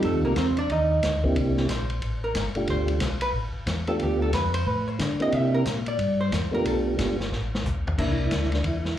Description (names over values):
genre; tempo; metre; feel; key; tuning
soul jazz organ trio; 181 BPM; 4/4; swing 63% on 8ths; C mixolydian; A4 = 439 Hz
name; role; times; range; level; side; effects
percussive tonewheel organ; melody; 0.0-9.0 s; B2 to G4; -26 LUFS; right 1 dB; slow rotary speaker, chorus vibrato, plate reverb, slapback echo
vintage hollow-body jazz guitar; accompaniment; 0.0-8.9 s; A3 to E5; -28 LUFS; right 1 dB; plate reverb, slapback echo
mellow tonewheel organ; bass; 0.0-9.0 s; G1 to D3; -27 LUFS; left 1 dB; slow rotary speaker
vintage drum kit; drums; 0.0-8.9 s; crash cymbal, hi-hat, kick drum, ride cymbal, snare drum, toms; -31 LUFS; left 1 dB; slapback echo
room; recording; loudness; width
light reverb; live gig heard through the venue's PA, club reverb; -23 LUFS; side -11 dB against mid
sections
0.0-8.0 A section; 8.0-9.0 A section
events
hollow-body jazz guitar solo 0.0-8.0; drum fill 7.3-8.0; tonewheel organ solo 8.0-9.0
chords
0.0 F9; 1.4 C9; 2.7 G9; 5.3 C9; 6.7 G9; 8.0 C9